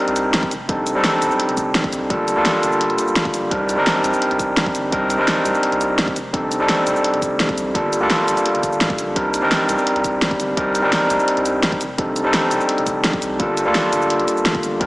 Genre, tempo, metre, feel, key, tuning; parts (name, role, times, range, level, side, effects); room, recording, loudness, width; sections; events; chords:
liquid drum and bass; 170 BPM; 4/4; straight; C dorian; A4 = 440 Hz
overdriven tine electric piano; accompaniment; 0.0-14.9 s; G3 to Bb4; -17 LUFS; equal; vintage 12-bit sampler grit, tape echo
warm sub bass; bass; 0.1-14.9 s; D1 to D2; -34 LUFS; equal
pop drum kit; drums; 0.1-14.9 s; hi-hat, shaker, snare drum; -22 LUFS; equal
electronic kick drum; drums; 0.4-14.9 s; -27 LUFS; equal
wet lush hall reverb, RT60 1.8 s; dreamy mix soaked in reverb, small speaker sound; -16 LUFS; side -20 dB against mid
0.0-14.9 A section
0.0 Cm9; 0.5 F13; 2.1 Gm9; 3.5 Cm9; 6.2 F13; 7.8 Gm9; 9.2 Cm9; 11.8 F13; 13.4 Gm9